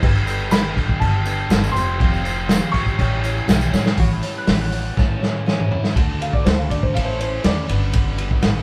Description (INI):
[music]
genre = folk rock and heartland rock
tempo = 121 BPM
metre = 4/4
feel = straight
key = unclear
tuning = A4 = 439 Hz
[part]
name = dark upright piano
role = accompaniment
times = 0.0-4.0 s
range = F4 to C#5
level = -40 LUFS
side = equal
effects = none
[part]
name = picked steel-string acoustic guitar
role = accompaniment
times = 0.0-8.6 s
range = A2 to C#5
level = -32 LUFS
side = equal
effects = none
[part]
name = overdriven electric guitar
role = riff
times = 0.0-8.6 s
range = G2 to B4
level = -31 LUFS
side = equal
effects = none
[part]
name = upright bass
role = bass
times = 0.0-8.6 s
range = F1 to A2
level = -25 LUFS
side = equal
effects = none
[part]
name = vintage drum kit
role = drums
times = 0.0-8.6 s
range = crash cymbal, hi-hat, kick drum, ride cymbal, snare drum, toms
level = -21 LUFS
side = equal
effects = none
[part]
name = tambourine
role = percussion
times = 0.2-3.9 s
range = none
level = -41 LUFS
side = equal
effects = none
[part]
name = dark baby grand piano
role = melody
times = 0.5-8.4 s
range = C5 to C#6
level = -29 LUFS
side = equal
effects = none
[part]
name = pedal steel guitar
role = second line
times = 4.0-5.2 s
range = F#4 to A5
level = -34 LUFS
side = equal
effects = none
[sound]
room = light reverb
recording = band playing live in one room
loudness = -19 LUFS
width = mono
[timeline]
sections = 0.0-4.0 A section; 4.0-6.0 B section; 6.0-8.6 C section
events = drum fill 3.7, 5.0-6.0; grand piano solo 6.0-8.6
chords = 0.0 Gadd9; 1.8 Fsus2; 3.0 A7; 6.0 D; 7.0 A; 7.7 G